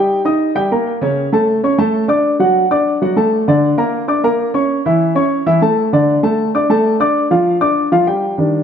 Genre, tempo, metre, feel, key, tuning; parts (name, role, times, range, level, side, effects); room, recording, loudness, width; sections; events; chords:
latin; 196 BPM; 4/4; straight; G minor; A4 = 440 Hz
dark upright piano; solo; 0.0-8.6 s; C#3 to Eb6; -12 LUFS; equal
moderate large studio reverb, RT60 1.4 s; dark, warm production, nothing above 7.6 kHz; -12 LUFS; side -8 dB against mid
0.0-8.4 A section
0.0 Eb/G; 1.0 A; 2.2 D; 3.5 Bb/D; 4.7 A; 5.9 D5; 7.2 G5